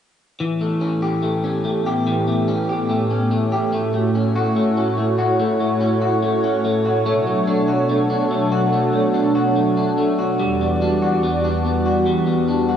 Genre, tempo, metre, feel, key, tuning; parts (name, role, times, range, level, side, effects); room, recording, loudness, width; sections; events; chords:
dream pop; 72 BPM; 4/4; straight; A4 = 440 Hz
warm analog pad; sustained chords; 0.4-12.8 s; E2 to D5; -20 LUFS; right 1 dB; chorus
electric guitar at the edge of break-up; arpeggios; 0.4-12.8 s; E3 to G4; -19 LUFS; left 1 dB; lush chorus, digital delay
wet huge ambient reverb, RT60 6.2 s; nothing above 10.4 kHz; -17 LUFS; side -8 dB against mid
0.4-12.8 A section
0.4 A7; 3.7 A6; 7.1 Bm7; 10.4 Em9